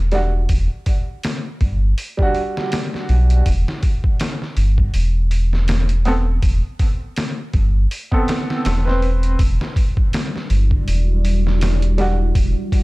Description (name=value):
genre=trip hop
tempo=81 BPM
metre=4/4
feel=swing 57% on 16ths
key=E minor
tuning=A4 = 440 Hz
part: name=round analog bass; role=bass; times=0.0-12.5 s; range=E1 to B1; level=-16 LUFS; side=equal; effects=none
part: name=clear upright piano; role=accompaniment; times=0.1-12.2 s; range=G3 to C5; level=-23 LUFS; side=right 1 dB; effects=tremolo, vintage 12-bit sampler grit, tape echo
part: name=trip hop sampler-style drum kit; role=drums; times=0.1-12.8 s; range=hi-hat, kick drum, snare drum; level=-20 LUFS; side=equal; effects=overdrive, studio reverb
part: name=deep dark ambient pad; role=sustained chords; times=10.0-12.8 s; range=G3 to D5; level=-26 LUFS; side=right 1 dB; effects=chorus, built-in reverb
room=digital ambience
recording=none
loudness=-16 LUFS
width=side -21 dB against mid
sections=0.0-12.8 A section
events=none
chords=0.0 Em9; 3.5 Amadd9/E; 9.4 Em9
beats=| 0.50 1.24 1.98 2.72 | 3.46 4.20 4.94 5.68 | 6.42 7.17 7.91 8.65 | 9.39 10.13 10.87 11.61 | 12.35